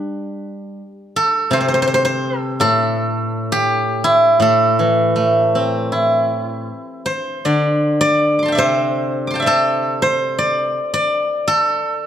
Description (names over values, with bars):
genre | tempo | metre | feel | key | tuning
chinese traditional, Chinese solo plucked strings | 82 BPM | 4/4 | rubato | D shang mode | A4 = 445 Hz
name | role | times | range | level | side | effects
steel-string zither | solo | 0.0-12.1 s | A2 to D6 | -15 LUFS | equal | none
room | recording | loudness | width
moderate recital hall reverb, RT60 1.7 s | none | -14 LUFS | side -10 dB against mid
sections
0.0-12.1 A section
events
none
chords
none